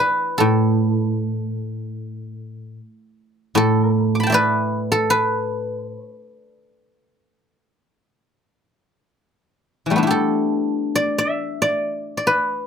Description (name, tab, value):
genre	chinese traditional, Chinese solo plucked strings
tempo	67-78 BPM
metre	4/4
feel	rubato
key	D zhi mode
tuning	A4 = 439 Hz
part	guzheng	solo	0.0-12.7 s	A2 to D6	-18 LUFS	equal	none
room	moderate small room reverb, RT60 0.5 s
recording	none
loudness	-18 LUFS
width	side -7 dB against mid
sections	0.0-10.1 A section; 10.1-12.7 B section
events	none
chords	none